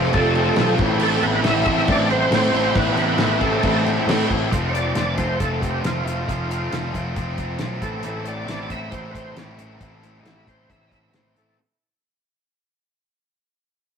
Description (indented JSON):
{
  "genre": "classic rock",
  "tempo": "136 BPM",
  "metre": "4/4",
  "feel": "straight",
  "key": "A minor",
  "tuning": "A4 = 436 Hz",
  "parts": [
    { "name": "dark upright piano", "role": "accompaniment", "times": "0.0-4.4 s", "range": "C4 to B5", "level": "-31 LUFS", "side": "left 4 dB", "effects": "none" },
    { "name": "biting overdriven guitar", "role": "riff", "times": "0.0-11.6 s", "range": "A2 to F4", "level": "-27 LUFS", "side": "left 5 dB", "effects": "none" },
    { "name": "overdriven electric guitar", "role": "riff", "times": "0.0-4.5 s", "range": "A2 to F4", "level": "-25 LUFS", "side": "equal", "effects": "phaser" },
    { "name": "raw garage guitar", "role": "riff", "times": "0.0-11.6 s", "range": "F2 to F4", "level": "-29 LUFS", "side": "right 5 dB", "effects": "overdrive" },
    { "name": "fuzz picked electric bass", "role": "bass", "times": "0.0-11.6 s", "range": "F1 to A2", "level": "-25 LUFS", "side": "equal", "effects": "overdrive" },
    { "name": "damped 70s drum kit", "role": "drums", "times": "0.0-11.5 s", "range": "crash cymbal, hi-hat, kick drum, snare drum", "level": "-25 LUFS", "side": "equal", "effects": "none" },
    { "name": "overdriven tonewheel organ", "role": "melody", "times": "0.1-11.6 s", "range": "E4 to E5", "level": "-24 LUFS", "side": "right 1 dB", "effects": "slow rotary speaker, chorus vibrato" },
    { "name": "dark smooth lead guitar", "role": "second line", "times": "0.1-3.8 s", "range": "A3 to E4", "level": "-32 LUFS", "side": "right 4 dB", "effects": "none" }
  ],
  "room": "moderate stone room reverb, RT60 1.1 s",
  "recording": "rough rehearsal-room recording",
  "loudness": "-18 LUFS",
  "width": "side -7 dB against mid",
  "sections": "0.0-4.5 A section; 4.5-11.6 B section",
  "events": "fade-out 4.5-11.6; tonewheel organ solo 4.5-11.6",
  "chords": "0.0 F; 0.8 Amadd9; 4.5 F; 7.8 Am"
}